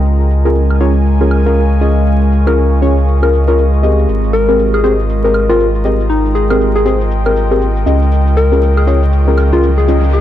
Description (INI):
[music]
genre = deep house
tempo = 119 BPM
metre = 4/4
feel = swing 61% on 16ths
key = unclear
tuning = A4 = 439 Hz
[part]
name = deep dark ambient pad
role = sustained chords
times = 0.0-10.2 s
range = Ab3 to Eb6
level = -21 LUFS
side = right 2 dB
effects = chorus, built-in reverb
[part]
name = deep mellow chord stab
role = stabs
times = 0.0-10.2 s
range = C4 to Eb5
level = -15 LUFS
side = left 1 dB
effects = chorus, cassette tape, digital delay
[part]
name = warm sub bass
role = bass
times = 0.0-10.2 s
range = Ab1 to Db2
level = -12 LUFS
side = equal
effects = none
[part]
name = airy breathy pad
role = texture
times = 0.0-10.2 s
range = F4 to Ab5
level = -23 LUFS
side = equal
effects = chorus
[part]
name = shaker and woodblock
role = drums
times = 0.1-10.2 s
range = none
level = -29 LUFS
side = right 3 dB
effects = low-pass filter on perc
[part]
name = soft struck synth lead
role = melody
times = 4.3-10.2 s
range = Eb4 to Bb4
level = -17 LUFS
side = left 2 dB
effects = chorus, dub echo
[part]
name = riser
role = sound effects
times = 9.5-10.2 s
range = none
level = -28 LUFS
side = right 1 dB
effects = none
[sound]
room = light reverb, digital ambience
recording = dark, warm production, vinyl crackle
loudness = -9 LUFS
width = side -12 dB against mid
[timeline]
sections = 0.0-10.2 A section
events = riser 9.5-10.2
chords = 0.0 Db6; 4.1 Abmaj9; 7.9 Db6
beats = | 0.05 0.55 1.06 1.56 | 2.06 2.57 3.07 3.58 | 4.08 4.59 5.09 5.59 | 6.10 6.60 7.11 7.61 | 8.12 8.62 9.12 9.63 | 10.13